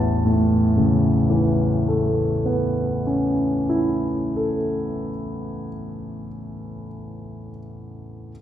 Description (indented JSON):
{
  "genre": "classical, impressionist solo piano",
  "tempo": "26 BPM (dotted quarters)",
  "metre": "9/8",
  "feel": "rubato",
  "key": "A major",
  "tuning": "A4 = 440 Hz",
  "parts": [
    { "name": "warm concert grand piano", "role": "solo", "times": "0.0-8.3 s", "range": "A1 to A5", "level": "-20 LUFS", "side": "equal", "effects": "none" }
  ],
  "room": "wet recital hall reverb, RT60 1.6 s",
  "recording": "heard from further back in the room",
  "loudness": "-19 LUFS",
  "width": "side -11 dB against mid",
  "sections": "0.0-6.1 A section",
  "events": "none",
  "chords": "0.0 Aadd9"
}